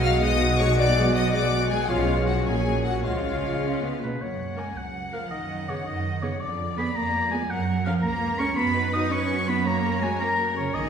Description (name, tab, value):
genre	classical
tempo	109 BPM (dotted quarters)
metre	6/8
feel	straight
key	F# major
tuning	A4 = 440 Hz
part	warm symphonic violin section	melody	0.0-10.9 s	B4 to E#6	-33 LUFS	left 6 dB	none
part	bright symphonic violin section	second line	0.0-10.9 s	E#4 to F#5	-33 LUFS	left 4 dB	none
part	flute section	second line	0.0-4.0 s	E#4 to E#5	-31 LUFS	left 2 dB	none
part	warm oboe	second line	0.0-10.9 s	B4 to D#6	-29 LUFS	left 1 dB	none
part	bright symphonic viola section	accompaniment	0.0-10.9 s	E#3 to B4	-33 LUFS	right 1 dB	none
part	warm bassoon	accompaniment	0.0-4.0 s	F#3 to G#3	-31 LUFS	left 1 dB	none
part	warm French horn section	sustained chords	0.0-4.0 s	F#3 to F#4	-31 LUFS	left 1 dB	none
part	rich studio cello section	bass	0.0-10.9 s	A#2 to D#4	-28 LUFS	right 1 dB	none
part	rich symphonic double bass section	bass	0.0-10.9 s	A#1 to F#2	-29 LUFS	right 3 dB	none
room	wet scoring stage reverb, RT60 1.6 s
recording	heard from further back in the room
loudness	-22 LUFS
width	side -7 dB against mid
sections	0.0-4.2 A section; 4.2-10.9 B section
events	none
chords	0.0 G#m7/B; 1.9 C#7/B; 2.5 F#/A#; 3.0 C#; 4.2 F#; 5.3 G#m7/F#; 6.4 Fdim7; 7.5 F#; 8.6 B/F#; 9.7 F#